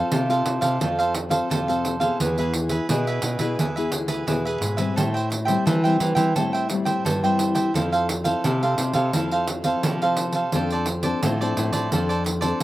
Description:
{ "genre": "samba and choro", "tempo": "86 BPM", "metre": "4/4", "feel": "straight", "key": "unclear", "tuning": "A4 = 438 Hz", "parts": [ { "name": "cavaquinho", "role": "accompaniment", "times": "0.0-12.6 s", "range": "E4 to G5", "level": "-24 LUFS", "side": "right 2 dB", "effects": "slapback echo" }, { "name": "nylon-string guitar", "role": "accompaniment", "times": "0.0-12.6 s", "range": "A2 to A4", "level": "-27 LUFS", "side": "left 4 dB", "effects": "none" }, { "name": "nylon-string guitar", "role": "bass", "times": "0.1-12.5 s", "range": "D2 to F3", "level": "-26 LUFS", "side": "equal", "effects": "none" }, { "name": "pandeiro", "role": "percussion", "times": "0.1-12.6 s", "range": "none", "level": "-27 LUFS", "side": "right 2 dB", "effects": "none" } ], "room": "little or no reverb", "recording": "recorded outdoors, with no room sound", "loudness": "-20 LUFS", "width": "side -15 dB against mid", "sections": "0.0-12.6 A section", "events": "none", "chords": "0.0 F; 2.2 E; 5.0 Am7; 7.8 Fmaj7; 10.5 Dm7/F" }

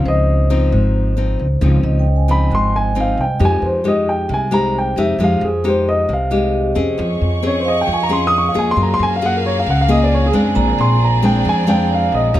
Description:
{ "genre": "bossa nova", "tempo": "134 BPM", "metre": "4/4", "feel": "straight", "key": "unclear", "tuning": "A4 = 440 Hz", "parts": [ { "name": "dark baby grand piano", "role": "melody", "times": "0.0-12.3 s", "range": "Ab4 to Eb6", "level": "-18 LUFS", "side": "equal", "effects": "none" }, { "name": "nylon-string guitar", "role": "accompaniment", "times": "0.0-12.4 s", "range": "Ab2 to Ab4", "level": "-19 LUFS", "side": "left 3 dB", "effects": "none" }, { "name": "upright bass", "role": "bass", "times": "0.0-12.4 s", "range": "Ab1 to Gb2", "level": "-18 LUFS", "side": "equal", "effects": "none" }, { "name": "vibraphone with medium hard mallets", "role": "accompaniment", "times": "0.1-12.4 s", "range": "G4 to Bb5", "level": "-24 LUFS", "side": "right 6 dB", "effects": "none" }, { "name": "rich studio violin section", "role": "sustained chords", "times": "7.0-12.4 s", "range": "G3 to Db6", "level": "-25 LUFS", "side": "right 1 dB", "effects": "none" } ], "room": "light reverb", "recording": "close, detailed microphones", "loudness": "-13 LUFS", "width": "side -13 dB against mid", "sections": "0.0-12.4 A section", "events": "grand piano solo 0.0-12.4", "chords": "0.0 Dbmaj9; 3.4 Fm9; 7.0 Bbm9/F; 8.8 Gbmaj9; 10.6 Bb9" }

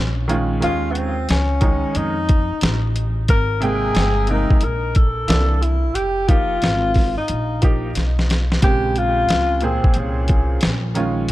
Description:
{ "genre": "hip hop, jazz-hop", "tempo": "90 BPM", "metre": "4/4", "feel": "swing 64% on 16ths", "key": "Bb dorian", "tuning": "A4 = 440 Hz", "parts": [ { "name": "mellow tenor saxophone", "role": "melody", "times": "0.0-11.0 s", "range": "Cb4 to Bb4", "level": "-22 LUFS", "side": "left 1 dB", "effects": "tape echo" }, { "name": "upright bass", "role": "bass", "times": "0.0-11.3 s", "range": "F1 to F2", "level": "-21 LUFS", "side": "equal", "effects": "none" }, { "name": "bright upright piano", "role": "accompaniment", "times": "0.3-11.3 s", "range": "Bb2 to G5", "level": "-24 LUFS", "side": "right 2 dB", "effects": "none" }, { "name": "boom bap sampler-style drum kit", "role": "drums", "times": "0.3-11.3 s", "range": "hi-hat, kick drum, snare drum", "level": "-18 LUFS", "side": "equal", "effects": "none" } ], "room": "small room ambience", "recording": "dark, warm production", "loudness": "-16 LUFS", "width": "side -16 dB against mid", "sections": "0.0-11.3 A section", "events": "drum fill 8.0-8.6", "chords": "0.0 Bbm7; 0.6 Eb9sus4; 3.3 Abmaj9; 5.3 C13; 6.0 F9sus4; 8.6 Bbm9; 10.6 Bbm7" }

